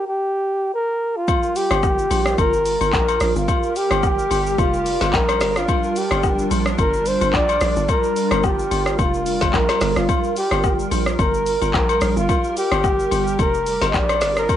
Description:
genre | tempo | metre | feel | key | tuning
amapiano | 109 BPM | 4/4 | swing 55% on 16ths | G minor | A4 = 440 Hz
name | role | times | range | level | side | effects
breathy flugelhorn | melody | 0.0-14.6 s | F4 to Eb5 | -21 LUFS | equal | cassette tape, analog delay
hollow soft pad | sustained chords | 1.3-14.6 s | G3 to Bb4 | -26 LUFS | right 2 dB | ensemble chorus, cassette tape
deep house drum kit | drums | 1.3-14.6 s | handclaps, hi-hat, kick drum, rim click, shaker, snare drum | -22 LUFS | equal | cassette tape
agogo bells and woodblock | percussion | 1.3-14.6 s | none | -26 LUFS | left 13 dB | none
hollow log drum bass | bass | 1.7-14.5 s | F1 to Bb1 | -24 LUFS | equal | none
room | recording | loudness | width
little or no reverb | home recording on cassette, nothing above 10.5 kHz | -17 LUFS | side -10 dB against mid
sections
0.0-1.3 A section; 1.3-14.6 B section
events
stop 0.0-1.3; drop 1.3-14.6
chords
0.0 Gm; 1.3 Gm7; 5.4 Bb6; 10.1 Gm7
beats
0.18 0.73 | 1.28 1.83 2.38 2.93 | 3.48 4.03 4.58 5.13 | 5.68 6.24 6.79 7.34 | 7.89 8.44 8.99 9.54 | 10.09 10.64 11.19 11.74 | 12.29 12.84 13.39 13.94 | 14.49

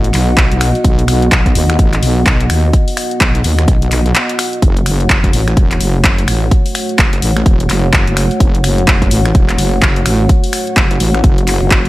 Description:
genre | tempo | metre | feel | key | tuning
bass house | 127 BPM | 4/4 | swing 60% on 16ths | F# dorian | A4 = 437 Hz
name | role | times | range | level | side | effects
dark analog pad | sustained chords | 0.0-11.9 s | A3 to F#5 | -19 LUFS | equal | chorus, sidechain pumping
wobble bass | bass | 0.0-11.9 s | E1 to D#2 | -14 LUFS | equal | chorus, sidechain pumping
house drum kit | drums | 0.0-11.9 s | finger snaps, handclaps, hi-hat | -16 LUFS | equal | studio reverb
electronic kick drum | drums | 0.4-11.8 s | none | -12 LUFS | equal | studio reverb
room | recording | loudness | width
digital ambience | none | -10 LUFS | side -18 dB against mid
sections
0.0-11.9 A section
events
break 4.2-4.6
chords
0.0 B; 4.6 F#m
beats
0.37 | 0.84 1.32 1.79 2.26 | 2.73 3.21 3.68 4.15 | 4.62 5.10 5.57 6.04 | 6.51 6.99 7.46 7.93 | 8.40 8.88 9.35 9.82 | 10.29 10.77 11.24 11.71

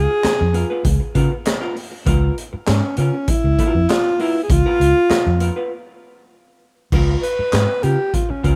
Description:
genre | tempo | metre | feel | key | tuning
funk | 99 BPM | 4/4 | straight | Db mixolydian | A4 = 440 Hz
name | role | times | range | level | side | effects
breathy alto saxophone | melody | 0.0-8.6 s | Db4 to Cb5 | -21 LUFS | equal | none
vintage muted fingered electric bass | bass | 0.0-8.6 s | Db2 to Db3 | -20 LUFS | equal | none
vintage hollow-body jazz guitar | accompaniment | 0.1-8.6 s | Cb4 to Cb5 | -29 LUFS | equal | none
raw garage drum kit | drums | 0.2-8.6 s | crash cymbal, handclaps, hi-hat, kick drum, snare drum | -24 LUFS | equal | none
room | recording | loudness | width
little or no reverb | rough home demo mix | -18 LUFS | mono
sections
0.0-6.9 A section; 6.9-8.6 B section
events
break 5.7-6.9; alto saxophone solo 6.9-8.6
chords
0.0 Db6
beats
0.24 0.85 1.46 | 2.06 2.67 3.28 3.89 | 4.49 5.10 5.71 6.32 | 6.92 7.53 8.14

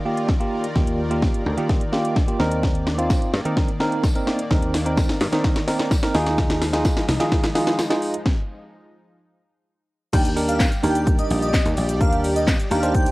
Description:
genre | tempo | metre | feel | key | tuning
dance-pop | 128 BPM | 4/4 | straight | Eb major | A4 = 439 Hz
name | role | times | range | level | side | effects
supersaw pad | sustained chords | 0.0-13.1 s | Eb3 to D5 | -30 LUFS | equal | sidechain pumping, cassette tape
dry thumbed slap bass | bass | 0.0-13.1 s | Bb1 to Eb3 | -25 LUFS | equal | sidechain pumping
bell-like tine electric piano | accompaniment | 0.1-13.1 s | Bb3 to C5 | -24 LUFS | right 1 dB | medium stereo tremolo, sidechain pumping, cassette tape
house drum kit | drums | 0.2-13.1 s | crash cymbal, handclaps, hi-hat, kick drum, shaker, snare drum | -21 LUFS | equal | none
tambourine | percussion | 3.1-12.6 s | none | -39 LUFS | left 2 dB | none
airy dreamy lead | melody | 10.1-13.1 s | Eb5 to G5 | -26 LUFS | equal | chorus, tape echo
room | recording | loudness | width
light reverb | home recording on cassette | -18 LUFS | side -20 dB against mid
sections
0.0-10.1 A section; 10.1-13.1 B section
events
build-up 0.0-10.1; drum fill 0.0-8.3; stop 8.3-10.1; drop 10.1-13.1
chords
0.0 Gm7; 2.4 Cm7/Eb; 6.1 Fm7; 10.1 Ebmaj7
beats
0.29 | 0.76 1.23 1.70 2.16 | 2.63 3.10 3.57 4.04 | 4.51 4.98 5.45 5.91 | 6.38 6.85 7.32 7.79 | 8.26 8.73 9.20 9.66 | 10.13 10.60 11.07 11.54 | 12.01 12.48 12.95

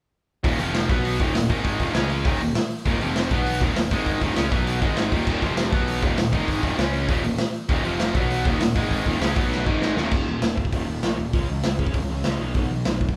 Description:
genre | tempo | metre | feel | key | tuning
punk rock | 198 BPM | 4/4 | straight | Eb minor | A4 = 438 Hz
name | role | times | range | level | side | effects
distorted electric guitar | riff | 0.4-13.2 s | Eb2 to Db4 | -32 LUFS | equal | distortion
distorted electric guitar | riff | 0.4-10.1 s | Eb2 to Db4 | -32 LUFS | equal | overdrive
tight distorted guitar | riff | 0.4-10.1 s | Eb2 to Db4 | -30 LUFS | equal | distortion
fuzz picked electric bass | bass | 0.4-13.1 s | Eb1 to Db2 | -31 LUFS | equal | overdrive
raw garage drum kit | drums | 0.4-13.2 s | crash cymbal, hi-hat, kick drum, snare drum | -26 LUFS | equal | none
room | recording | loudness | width
moderate large studio reverb, RT60 1.0 s | band playing live in one room | -23 LUFS | mono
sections
0.4-10.1 A section; 10.1-13.2 B section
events
drum fill 9.5-10.1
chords
0.4 Eb5; 0.6 F5; 0.9 B5; 1.2 Eb5; 1.5 Ab5; 1.8 Eb5; 2.0 Db5; 2.3 Eb5; 3.0 F5; 3.3 B5; 3.6 Eb5; 3.9 Ab5; 4.2 Eb5; 4.5 B5; 4.8 Ab5; 5.1 Eb5; 5.4 F5; 5.7 B5; 6.0 Eb5; 6.3 Ab5; 6.6 Eb5; 6.8 Db5; 7.1 Eb5; 7.8 F5; 8.1 B5; 8.5 Eb5; 8.8 Ab5; 9.1 Eb5; 9.4 B5; 9.7 Ab5; 10.0 Eb5; 11.3 Db5; 12.4 B5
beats
| 0.45 0.75 1.05 1.35 | 1.65 1.96 2.26 2.56 | 2.86 3.16 3.46 3.77 | 4.07 4.37 4.67 4.97 | 5.28 5.58 5.88 6.18 | 6.49 6.79 7.09 7.39 | 7.69 8.00 8.30 8.60 | 8.90 9.21 9.51 9.81 | 10.12 10.42 10.73 11.03 | 11.34 11.64 11.95 12.25 | 12.56 12.86

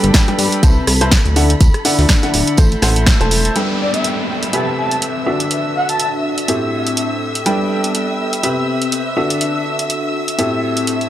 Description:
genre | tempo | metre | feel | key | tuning
piano house | 123 BPM | 4/4 | swing 57% on 16ths | G major | A4 = 440 Hz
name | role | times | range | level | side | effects
rich studio violin section | sustained chords | 0.0-11.1 s | A4 to E6 | -25 LUFS | left 1 dB | sidechain pumping
clear upright piano | riff | 0.0-11.1 s | A2 to A5 | -18 LUFS | left 1 dB | sidechain pumping, dub echo
plucky analog bass | bass | 0.0-3.5 s | D1 to G2 | -16 LUFS | equal | sidechain pumping
punchy analog drum machine | drums | 0.0-11.1 s | hi-hat, rim click, snare drum | -18 LUFS | right 1 dB | none
electronic kick drum | drums | 0.1-3.2 s | none | -12 LUFS | equal | none
vintage brush drum kit | drums | 0.1-3.4 s | hi-hat, snare drum, tambourine | -26 LUFS | right 2 dB | none
downlifter | sound effects | 3.6-7.5 s | none | -25 LUFS | left 1 dB | none
airy breathy pad | texture | 3.6-11.1 s | B3 to G5 | -24 LUFS | equal | chorus, sidechain pumping
breathy flute-like synth lead | melody | 3.8-6.1 s | D5 to A5 | -23 LUFS | equal | ensemble chorus, dub echo
room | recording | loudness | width
light reverb, small room reverb | none | -13 LUFS | side -12 dB against mid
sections
0.0-3.6 A section; 3.6-11.1 B section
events
band accent 3.1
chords
0.0 Gadd9; 0.6 Cmaj7; 1.4 Dadd9; 2.6 Am; 3.6 Gadd9; 4.5 Cmaj7; 5.3 Dadd9; 6.5 Am7; 7.5 Gadd9; 8.4 Cmaj7; 9.2 Dadd9; 10.4 Am7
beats
0.14 0.63 1.12 | 1.61 2.09 2.58 3.07 | 3.56 4.04 4.53 5.02 | 5.51 6.00 6.48 6.97 | 7.46 7.95 8.44 8.92 | 9.41 9.90 10.39 10.87

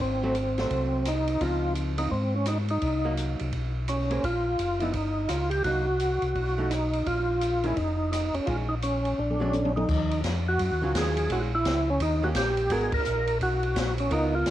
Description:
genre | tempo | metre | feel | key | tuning
soul jazz organ trio | 170 BPM | 4/4 | swing 63% on 8ths | Bb minor, Eb minor from 9.9 s | A4 = 440 Hz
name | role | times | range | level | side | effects
percussive tonewheel organ | melody | 0.0-14.5 s | C4 to Bb4 | -27 LUFS | equal | slow rotary speaker, overdrive, chorus vibrato, cassette tape
mellow tonewheel organ | bass | 0.0-14.5 s | F1 to Ab2 | -29 LUFS | equal | chorus vibrato, slow rotary speaker
open jazz drum kit | drums | 0.0-14.5 s | crash cymbal, hi-hat, kick drum, ride cymbal, rim click, snare drum, toms | -33 LUFS | equal | cassette tape
archtop guitar, miked and amplified | accompaniment | 0.2-14.5 s | Eb3 to C5 | -33 LUFS | right 2 dB | cassette tape
room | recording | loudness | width
light reverb, studio ambience | home recording on cassette | -24 LUFS | side -13 dB against mid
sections
0.0-9.9 A section; 9.9-14.5 B section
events
drum fill 9.2-9.9; band accent 12.9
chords
0.0 Ab7b9; 1.4 Dbmaj9; 2.8 Cm7b5; 3.5 Bsus2; 4.2 Bb5; 4.9 Eb9/G; 5.6 Cm7b5; 6.4 B7#11; 7.1 Bbm7; 9.2 Bb7alt; 9.9 Ebm9; 11.3 Bbm7b5; 12.0 Eb7; 12.7 Abm9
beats
0.35 0.70 1.05 | 1.41 1.76 2.11 2.47 | 2.82 3.17 3.53 3.88 | 4.24 4.59 4.94 5.29 | 5.65 6.00 6.36 6.71 | 7.06 7.42 7.77 8.12 | 8.48 8.83 9.18 9.54 | 9.89 10.24 10.59 10.94 | 11.30 11.65 12.00 12.35 | 12.70 13.05 13.41 13.76 | 14.11 14.46

